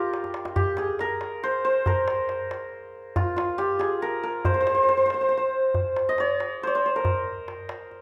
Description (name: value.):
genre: Persian modal ensemble.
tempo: 92 BPM (dotted quarters).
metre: 6/8.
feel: straight.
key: unclear.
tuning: A4 = 440 Hz.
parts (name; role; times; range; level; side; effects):
santur; melody; 0.0-8.0 s; F4 to Eb5; -26 LUFS; equal; none.
tombak; percussion; 0.1-8.0 s; none; -32 LUFS; equal; none.
room: moderate recital hall reverb, RT60 1.4 s.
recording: none.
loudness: -25 LUFS.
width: mono.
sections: 0.0-5.8 A section; 5.8-8.0 B section.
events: drum fill 0.1-0.6.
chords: none.